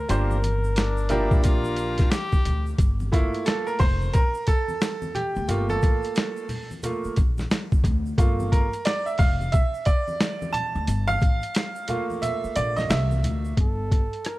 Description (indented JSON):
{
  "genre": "hip hop, jazz-hop",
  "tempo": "89 BPM",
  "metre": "4/4",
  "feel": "swing 62% on 16ths",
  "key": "G dorian",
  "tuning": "A4 = 440 Hz",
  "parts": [
    { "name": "breathy flugelhorn", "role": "melody", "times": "0.0-2.1, 13.6-14.4 s", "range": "A4 to Bb4", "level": "-32 LUFS", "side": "equal", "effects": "tape echo" },
    { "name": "upright bass", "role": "bass", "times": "0.0-14.0 s", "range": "F1 to D2", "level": "-26 LUFS", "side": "equal", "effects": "none" },
    { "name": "bright upright piano", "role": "accompaniment", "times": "0.1-13.5 s", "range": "F3 to A5", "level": "-26 LUFS", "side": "right 2 dB", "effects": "none" },
    { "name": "boom bap sampler-style drum kit", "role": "drums", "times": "0.1-14.4 s", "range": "hi-hat, kick drum, rim click, snare drum", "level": "-22 LUFS", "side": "equal", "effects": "none" },
    { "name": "tube shaker and congas", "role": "percussion", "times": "0.1-13.6 s", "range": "none", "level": "-36 LUFS", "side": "left 1 dB", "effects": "none" },
    { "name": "bright tenor saxophone", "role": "second line", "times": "0.8-2.8 s", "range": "D4 to G4", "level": "-31 LUFS", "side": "left 3 dB", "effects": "none" }
  ],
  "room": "small room ambience",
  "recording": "none",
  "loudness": "-21 LUFS",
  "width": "side -18 dB against mid",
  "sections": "0.0-2.8 A section; 2.8-13.6 B section",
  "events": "upright piano solo 2.8-13.6; kick muted 12.2-13.6",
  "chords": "0.0 Gm7; 2.8 Gm9; 13.6 Gsus2"
}